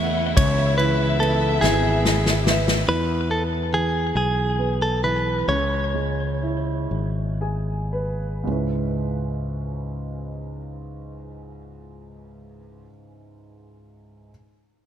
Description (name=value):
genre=six-eight pop ballad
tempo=36-48 BPM (dotted quarters)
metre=6/8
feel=straight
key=C# minor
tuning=A4 = 440 Hz
part: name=direct-recorded clean electric guitar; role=melody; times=0.0-7.4 s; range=G#4 to E5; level=-24 LUFS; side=equal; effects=ping-pong delay
part: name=dark studio violin section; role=second line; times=0.0-2.8 s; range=E5 to F#5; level=-29 LUFS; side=left 2 dB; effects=none
part: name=warm baby grand piano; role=accompaniment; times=0.0-14.3 s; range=C#2 to G#5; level=-29 LUFS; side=right 1 dB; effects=lush chorus
part: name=warm symphonic string section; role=sustained chords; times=0.0-2.8 s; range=C#3 to E4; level=-31 LUFS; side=left 1 dB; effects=none
part: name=fretless electric bass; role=bass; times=0.0-12.9 s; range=G#1 to E2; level=-25 LUFS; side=equal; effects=none
part: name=natural country drum kit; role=drums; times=0.4-2.9 s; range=kick drum, ride cymbal, snare drum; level=-22 LUFS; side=left 1 dB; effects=gated reverb
room=light reverb, small room reverb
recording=bright 1980s-style digital production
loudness=-20 LUFS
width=side -9 dB against mid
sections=0.0-2.9 A section; 2.9-8.5 B section; 8.5-11.8 C section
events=drum fill 1.6-2.9; slowing down 2.9-8.5; grand piano fill 6.9-8.5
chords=0.4 C#m7; 2.9 E5; 5.5 C#m7